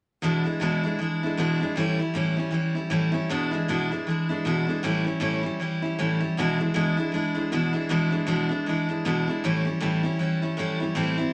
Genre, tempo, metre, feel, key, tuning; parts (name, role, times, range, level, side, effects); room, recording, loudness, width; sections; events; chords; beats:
rock; 156 BPM; 4/4; swing 59% on 8ths; E mixolydian; A4 = 436 Hz
picked steel-string acoustic guitar; solo; 0.2-11.3 s; E2 to E4; -26 LUFS; equal
light reverb; -26 LUFS; mono
0.2-3.3 A section; 3.3-11.3 B section
0.2 E7; 1.8 A7; 3.3 E7; 4.8 A7; 6.4 E7; 9.4 A7
| 0.23 0.61 1.00 1.38 | 1.76 2.15 2.53 2.92 | 3.30 3.68 4.06 4.45 | 4.83 5.21 5.60 5.98 | 6.36 6.75 7.13 7.51 | 7.90 8.28 8.66 9.05 | 9.43 9.82 10.20 10.59 | 10.97